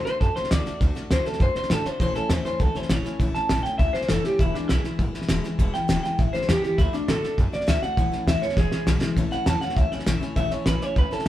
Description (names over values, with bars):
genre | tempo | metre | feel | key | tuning
rockabilly | 201 BPM | 4/4 | straight | A major | A4 = 440 Hz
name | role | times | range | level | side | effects
electric guitar through a small old amp | melody | 0.0-11.3 s | D4 to A5 | -26 LUFS | equal | none
picked steel-string acoustic guitar | accompaniment | 0.0-11.3 s | E2 to F#4 | -30 LUFS | left 3 dB | none
upright bass | bass | 0.1-11.3 s | E1 to A2 | -27 LUFS | equal | none
cloth-damped thuddy drum kit | drums | 0.1-11.3 s | hi-hat, kick drum, snare drum | -24 LUFS | equal | none
room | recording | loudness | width
moderate studio reverb, RT60 0.8 s | band playing live in one room | -21 LUFS | side -13 dB against mid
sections
0.0-9.2 A section; 9.2-11.3 A section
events
drum fill 8.6-9.2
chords
0.0 D; 2.0 A; 4.4 E; 6.8 D; 8.0 A; 8.6 E; 9.2 A